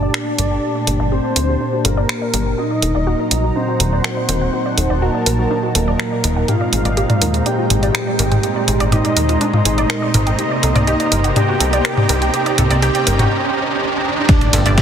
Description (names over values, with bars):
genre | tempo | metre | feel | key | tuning
melodic techno | 123 BPM | 4/4 | straight | G harmonic minor | A4 = 441 Hz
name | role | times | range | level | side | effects
expressive synth lead | melody | 0.0-14.8 s | Bb3 to G4 | -23 LUFS | equal | wide subtle chorus, cassette tape, tape echo
soft supersaw | second line | 0.0-14.8 s | Bb4 to G5 | -25 LUFS | equal | sidechain pumping, low-pass filter, ping-pong delay
warm analog pad | sustained chords | 0.0-14.8 s | Ab3 to Bb5 | -26 LUFS | right 1 dB | chorus, sidechain pumping
wide unison pluck | arpeggios | 0.0-14.8 s | D4 to G5 | -25 LUFS | equal | vintage 12-bit sampler grit, sidechain pumping, ping-pong delay
brassy analog pad | stabs | 0.0-14.8 s | Bb2 to G4 | -24 LUFS | right 3 dB | chorus, sidechain pumping, ping-pong delay
plucky analog bass | bass | 0.0-14.8 s | Eb1 to Eb2 | -18 LUFS | equal | tube saturation, sidechain pumping
riser and impact | sound effects | 5.1-14.8 s | none | -26 LUFS | right 1 dB | none
warbly tape-like pad | texture | 0.0-14.8 s | Ab3 to C6 | -27 LUFS | left 1 dB | chorus, built-in reverb, sidechain pumping
techno drum kit | drums | 0.1-14.8 s | finger snaps, hi-hat, toms | -19 LUFS | equal | overdrive, soft clipping on snare
dusty soul sampler-style drum kit | drums | 14.3-14.8 s | hi-hat, ride cymbal, snare drum | -26 LUFS | right 2 dB | sidechain pumping on cymbals, high-pass filter on cymbals, sidechain pumping on hats, high-pass filter on hats, soft clipping on snare, high-pass filter on snare
electronic kick drum | drums | 14.3-14.8 s | none | -12 LUFS | equal | none
room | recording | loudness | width
light reverb | dense, heavily limited modern master | -14 LUFS | side -8 dB against mid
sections
0.0-14.3 A section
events
build-up 0.0-14.3; filter sweep on synth arpeggio sound 0.0-14.3; filter sweep on analog synth lead 0.0-14.3; filter sweep on supersaw synth 0.0-14.3; filter sweep on analog synth pad 0.0-14.3; riser 5.1-14.3; break 13.3-14.3; impact 14.3-14.8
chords
0.0 Gmadd9; 2.6 Ebm; 6.5 Abadd9; 10.4 Cm7; 14.3 Gmadd9